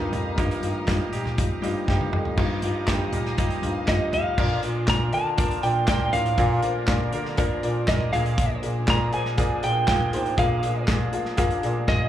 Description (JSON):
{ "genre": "piano-driven pop", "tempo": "120 BPM", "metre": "4/4", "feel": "straight", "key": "Bb major", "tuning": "A4 = 445 Hz", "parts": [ { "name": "twelve-string electric guitar", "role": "melody", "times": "0.0-12.1 s", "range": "Bb4 to Bb5", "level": "-26 LUFS", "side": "equal", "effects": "warbly pitch drift, plate reverb, slapback echo, tape echo" }, { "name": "dark upright piano", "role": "accompaniment", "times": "0.0-12.1 s", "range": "G2 to F5", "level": "-29 LUFS", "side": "left 2 dB", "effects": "plate reverb, slapback echo" }, { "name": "warm studio string section", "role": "sustained chords", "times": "0.0-12.1 s", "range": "Ab3 to Bb5", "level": "-36 LUFS", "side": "left 1 dB", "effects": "plate reverb" }, { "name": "direct-recorded clean electric guitar", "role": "riff", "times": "0.0-12.1 s", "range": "G2 to Bb4", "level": "-33 LUFS", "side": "right 7 dB", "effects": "slapback echo" }, { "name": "mellow bass clarinet", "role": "bass", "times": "0.0-12.1 s", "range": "F2 to D3", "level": "-27 LUFS", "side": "equal", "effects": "none" }, { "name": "loose indie drum kit", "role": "drums", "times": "0.0-12.0 s", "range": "crash cymbal, handclaps, hi-hat, kick drum, snare drum, toms", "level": "-26 LUFS", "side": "equal", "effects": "none" } ], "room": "moderate club reverb, RT60 0.5 s", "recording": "live gig heard through the venue's PA, club reverb", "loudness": "-21 LUFS", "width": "side -11 dB against mid", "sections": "0.0-2.4 A section; 2.4-4.4 B section; 4.4-12.1 C section", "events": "drum fill 1.9-2.4, 11.9", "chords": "0.0 Ebadd9; 2.4 Ebadd9/G; 4.4 Bb; 8.1 Bb7", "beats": "| 0.38 0.88 1.38 1.88 | 2.38 2.88 3.38 3.88 | 4.38 4.88 5.38 5.88 | 6.38 6.88 7.38 7.88 | 8.38 8.88 9.38 9.88 | 10.38 10.88 11.38 11.88" }